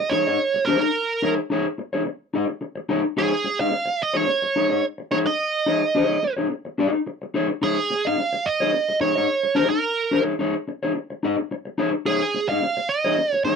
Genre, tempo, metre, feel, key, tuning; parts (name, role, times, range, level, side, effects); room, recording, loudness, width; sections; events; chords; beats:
funk; 108 BPM; 4/4; straight; A4 = 435 Hz
nasal lead guitar with a parked wah; melody; 0.0-13.6 s; Ab4 to F5; -21 LUFS; right 4 dB; overdrive
electric guitar at the edge of break-up; accompaniment; 0.0-13.6 s; Eb4 to Eb5; -22 LUFS; left 3 dB
light reverb; dry, close 1970s-style studio recording; -20 LUFS; side -6 dB against mid
0.0-13.6 A section
0.0 Eb7sus4
0.40 | 0.95 1.51 2.06 2.62 | 3.18 3.73 4.29 4.84 | 5.40 5.95 6.51 7.07 | 7.62 8.18 8.73 9.29 | 9.84 10.40 10.96 11.51 | 12.07 12.63 13.18